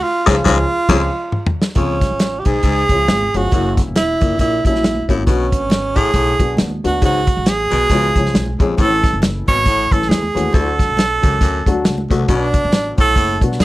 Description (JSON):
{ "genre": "uptempo 1960s-style soul", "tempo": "137 BPM", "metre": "4/4", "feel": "swing 58% on 8ths", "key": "unclear", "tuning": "A4 = 435 Hz", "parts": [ { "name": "breathy tenor saxophone", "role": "melody", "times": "0.0-13.6 s", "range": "C#4 to C#5", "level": "-18 LUFS", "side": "right 3 dB", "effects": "none" }, { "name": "dark upright piano", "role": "accompaniment", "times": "0.3-13.6 s", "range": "D3 to G#4", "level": "-22 LUFS", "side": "left 3 dB", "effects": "none" }, { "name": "breathy baritone saxophone", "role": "riff", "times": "0.3-13.4 s", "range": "D2 to B2", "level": "-21 LUFS", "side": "left 5 dB", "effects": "none" }, { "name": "upright bass", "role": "bass", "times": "0.3-13.6 s", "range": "E1 to B2", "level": "-22 LUFS", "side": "equal", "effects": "none" }, { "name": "warm soul drum kit", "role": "drums", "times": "0.3-13.6 s", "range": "crash cymbal, hi-hat, kick drum, snare drum, toms", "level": "-16 LUFS", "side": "equal", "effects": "none" }, { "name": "congas", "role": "percussion", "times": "1.8-13.6 s", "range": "none", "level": "-29 LUFS", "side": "right 1 dB", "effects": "none" } ], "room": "light reverb", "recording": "none", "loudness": "-13 LUFS", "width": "side -17 dB against mid", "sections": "0.0-1.8 A section; 1.8-13.6 B section", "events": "band accent 0.0-1.8; drum fill 0.9-1.8", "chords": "0.0 C#; 3.5 F#7; 5.3 Bm; 7.0 C#sus4; 7.9 C#; 8.8 A; 10.5 D; 12.3 Bm" }